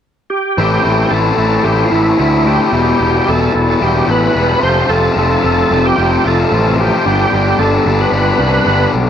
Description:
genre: rock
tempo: 111 BPM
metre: 4/4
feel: straight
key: A minor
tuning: A4 = 437 Hz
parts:
  - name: overdriven tonewheel organ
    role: melody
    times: 0.3-8.9 s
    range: E4 to C5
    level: -15 LUFS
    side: right 4 dB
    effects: chorus vibrato, slow rotary speaker
  - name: crunchy overdriven guitar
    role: riff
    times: 0.6-9.1 s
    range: E2 to G4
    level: -14 LUFS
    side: left 6 dB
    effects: none
  - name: fuzz picked electric bass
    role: bass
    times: 0.6-9.1 s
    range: E1 to D2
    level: -16 LUFS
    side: right 1 dB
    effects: overdrive
room: moderate small room reverb, RT60 0.5 s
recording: cassette tape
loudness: -10 LUFS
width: side -9 dB against mid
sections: 0.6-9.1 A section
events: none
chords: 0.0 N.C.; 0.6 Am; 2.7 Em; 4.6 F; 7.1 G

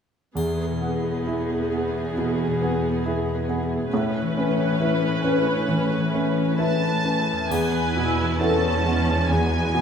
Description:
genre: cinematic, emotional film score for orchestra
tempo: 67 BPM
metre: 4/4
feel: rubato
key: unclear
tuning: A4 = 440 Hz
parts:
  - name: felt-muted upright piano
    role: accompaniment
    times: 0.4-9.8 s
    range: E2 to B4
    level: -25 LUFS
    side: equal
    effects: none
  - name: warm symphonic viola section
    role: accompaniment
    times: 0.4-9.8 s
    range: G#3 to B4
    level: -27 LUFS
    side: right 1 dB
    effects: none
  - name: concert harp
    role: arpeggios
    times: 0.4-9.8 s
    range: E2 to B4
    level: -29 LUFS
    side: left 5 dB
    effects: none
  - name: warm studio cello section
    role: bass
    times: 0.4-9.8 s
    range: E2 to A2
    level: -27 LUFS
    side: right 1 dB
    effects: none
  - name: triangle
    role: percussion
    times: 0.4-2.1, 7.5-9.3 s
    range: none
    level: -44 LUFS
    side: left 1 dB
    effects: none
  - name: rich symphonic violin section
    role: melody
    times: 6.6-9.8 s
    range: G#5 to A5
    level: -26 LUFS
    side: equal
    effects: none
room: wet stone room reverb, RT60 1.1 s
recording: minimal, uncompressed stereo recording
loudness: -20 LUFS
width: side -7 dB against mid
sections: 0.4-7.5 A section; 7.5-9.8 B section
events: none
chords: 0.4 E; 3.9 Aadd9; 7.5 E

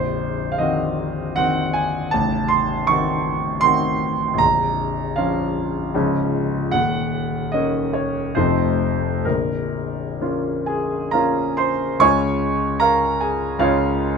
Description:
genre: classical, romantic character piece for solo piano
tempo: 63-81 BPM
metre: 3/4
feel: rubato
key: Bb minor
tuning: A4 = 439 Hz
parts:
  - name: clear concert grand piano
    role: solo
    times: 0.0-14.2 s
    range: A0 to Db6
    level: -18 LUFS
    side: equal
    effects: none
room: moderate large studio reverb, RT60 0.9 s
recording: minimal, uncompressed stereo recording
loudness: -18 LUFS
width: side -5 dB against mid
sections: 0.0-12.0 A section; 12.0-14.2 B section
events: none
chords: 0.0 Cm7b5/Bb; 2.1 Adim7; 4.4 Bbm; 5.9 Db; 6.7 Ebm7; 8.4 F7; 9.3 Bbm; 12.0 Db

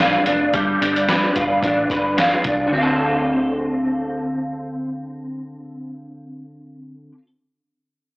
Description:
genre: indie pop, bedroom pop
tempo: 110 BPM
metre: 4/4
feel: swing 55% on 16ths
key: D dorian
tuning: A4 = 440 Hz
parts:
  - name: electric guitar through a small old amp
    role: accompaniment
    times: 0.0-7.3 s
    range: D3 to B4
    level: -19 LUFS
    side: equal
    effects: ensemble chorus, warbly pitch drift
  - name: hollow-body short-scale fingered electric bass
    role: bass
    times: 0.0-7.1 s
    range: F1 to D2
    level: -33 LUFS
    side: equal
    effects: tube saturation
  - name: boom bap sampler-style drum kit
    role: drums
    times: 0.0-2.6 s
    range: hi-hat, kick drum, snare drum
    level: -22 LUFS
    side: equal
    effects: overdrive
room: wet studio reverb, RT60 0.5 s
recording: blown-out, overdriven recording, overdrive, AM radio sound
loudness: -17 LUFS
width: side -27 dB against mid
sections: 0.0-2.7 A section; 2.7-7.1 B section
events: none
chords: 0.0 G7; 2.7 Dm7

